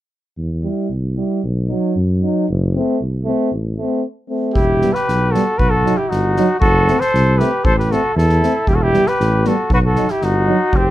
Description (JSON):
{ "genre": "balkan folk, Balkan brass band", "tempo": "116 BPM", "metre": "2/4", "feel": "straight", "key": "E harmonic minor", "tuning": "A4 = 436 Hz", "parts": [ { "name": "dark tuba", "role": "bass", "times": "0.4-10.9 s", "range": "E1 to F#2", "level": "-18 LUFS", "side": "equal", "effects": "none" }, { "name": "warm euphonium", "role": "accompaniment", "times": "0.6-10.6 s", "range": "B3 to E4", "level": "-22 LUFS", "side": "left 5 dB", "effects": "none" }, { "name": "warm trombone", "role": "accompaniment", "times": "0.6-10.6 s", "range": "F#3 to A3", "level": "-21 LUFS", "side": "right 5 dB", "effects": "none" }, { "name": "warm flugelhorn", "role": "melody", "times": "4.5-10.9 s", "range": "F#4 to C5", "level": "-18 LUFS", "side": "equal", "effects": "none" }, { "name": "mellow trumpet", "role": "second line", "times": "4.6-10.9 s", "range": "C4 to A4", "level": "-22 LUFS", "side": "left 1 dB", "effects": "none" }, { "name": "soft-mallet drum kit", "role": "percussion", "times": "4.6-10.9 s", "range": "kick drum, snare drum", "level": "-22 LUFS", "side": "equal", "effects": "none" } ], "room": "light reverb", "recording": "close, detailed microphones", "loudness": "-14 LUFS", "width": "side -14 dB against mid", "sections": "0.4-4.6 A section; 4.6-10.9 B section", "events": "none", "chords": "0.4 Em; 1.4 B; 2.5 F#dim; 3.5 Am; 4.6 Em; 5.6 B; 6.6 F#dim; 7.6 Am; 8.7 Em; 9.7 B" }